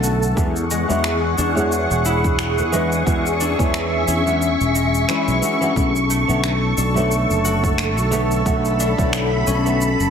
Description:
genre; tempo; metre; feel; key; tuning
sunset chillout; 89 BPM; 4/4; swing 56% on 16ths; unclear; A4 = 440 Hz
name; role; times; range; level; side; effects
nylon-string guitar; accompaniment; 0.0-9.9 s; D3 to C#5; -24 LUFS; moving between left 2 dB and right 4 dB; auto-pan, low-pass filter, tape echo
soft string machine; sustained chords; 0.0-10.1 s; G#4 to C#6; -22 LUFS; equal; phaser, ensemble chorus, vintage 12-bit sampler grit
concert harp; arpeggios; 0.0-10.1 s; G#3 to F#4; -25 LUFS; left 6 dB; tape echo
sustaining fretless electric bass; bass; 0.0-10.1 s; E1 to E2; -22 LUFS; equal; ensemble chorus
electronic shaker and finger snaps; drums; 0.0-10.1 s; none; -27 LUFS; equal; overdrive
electronic kick drum; drums; 0.4-9.1 s; none; -22 LUFS; equal; overdrive
room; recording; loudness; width
light reverb; heavily compressed radio sound; -16 LUFS; side -7 dB against mid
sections
0.0-10.1 A section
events
none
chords
0.4 E13; 5.8 Bm9

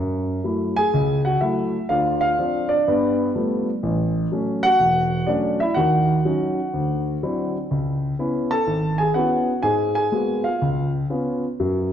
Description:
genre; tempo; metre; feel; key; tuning
solo jazz; 124 BPM; 4/4; swing 66% on 8ths; unclear; A4 = 444 Hz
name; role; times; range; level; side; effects
warm concert grand piano; solo; 0.0-11.9 s; E1 to A5; -19 LUFS; equal; none
room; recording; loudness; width
wet recital hall reverb, RT60 1.7 s; recorded in a church or concert hall, faint mains hum; -19 LUFS; side -9 dB against mid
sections
0.0-11.9 A section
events
none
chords
0.0 F#m7; 1.9 Dm7; 2.9 G9; 3.8 A6; 5.8 D#m7; 6.7 D9; 7.7 C#m7; 9.6 G#m9; 10.6 C#7

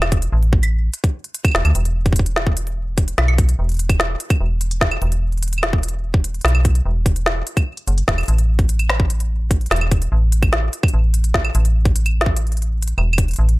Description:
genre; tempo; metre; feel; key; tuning
IDM; 147 BPM; 4/4; straight; unclear; A4 = 440 Hz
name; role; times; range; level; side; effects
metallic FM bass; bass; 0.0-13.6 s; E1 to D2; -18 LUFS; equal; none
organic electronic drum kit; drums; 0.0-13.6 s; claves, hi-hat, snare drum; -22 LUFS; equal; none
electronic kick drum; drums; 0.1-13.3 s; none; -17 LUFS; equal; none
room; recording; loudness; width
little or no reverb; none; -16 LUFS; side -20 dB against mid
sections
0.0-13.6 A section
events
none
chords
none

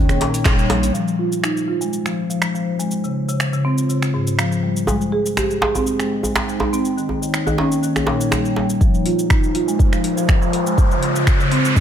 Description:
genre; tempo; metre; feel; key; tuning
afro house; 122 BPM; 4/4; swing 53% on 16ths; F minor; A4 = 440 Hz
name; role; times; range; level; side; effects
dark analog pad; sustained chords; 0.0-11.8 s; Ab3 to G5; -26 LUFS; equal; chorus, phaser, sidechain pumping
marimba with medium mallets; arpeggios; 0.0-11.8 s; Ab2 to Ab4; -20 LUFS; equal; sidechain pumping, low-pass filter, digital delay
dark detuned saw bass; bass; 0.0-0.9 s; Eb1 to Eb2; -22 LUFS; equal; sidechain pumping
afro-pop drum kit; drums; 0.1-11.8 s; finger snaps, handclaps, hi-hat, shaker; -25 LUFS; right 1 dB; none
djembe; percussion; 0.1-0.8, 4.9-8.7 s; none; -24 LUFS; right 1 dB; none
electronic kick drum; drums; 0.5-0.6, 8.8-11.8 s; none; -16 LUFS; equal; none
riser; sound effects; 9.5-11.8 s; none; -24 LUFS; left 1 dB; none
room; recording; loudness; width
light reverb, digital ambience; none; -16 LUFS; side -9 dB against mid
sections
0.9-8.8 A section; 8.8-11.8 B section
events
band accent 0.5; filter sweep on marimba 0.9-8.8, 8.8-11.8; build-up 8.8-11.8; riser 9.5-11.8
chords
0.0 Eb7; 0.9 Fm7; 2.9 Dbmaj7; 4.9 Abmaj7; 6.8 Eb7; 8.8 Fm7; 10.8 Dbmaj7

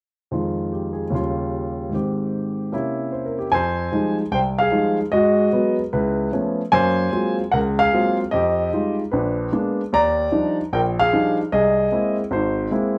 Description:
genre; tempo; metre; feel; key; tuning
solo jazz; 150 BPM; 4/4; swing 66% on 8ths; F minor; A4 = 440 Hz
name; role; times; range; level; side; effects
warm grand piano; solo; 0.3-13.0 s; G#1 to Bb5; -21 LUFS; equal; none
room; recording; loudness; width
moderate studio reverb, RT60 0.9 s; none; -21 LUFS; mono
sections
0.3-3.5 A section; 3.5-13.0 B section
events
none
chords
0.3 Fm7; 1.1 Eb9; 1.9 Abmaj7; 2.7 C7b9; 3.5 Fm9; 5.1 Abm7; 5.9 Db7alt; 6.7 Gbmaj9#11; 8.3 Fm9; 9.1 Bb7b9; 9.9 Ebmaj9; 11.5 C7alt

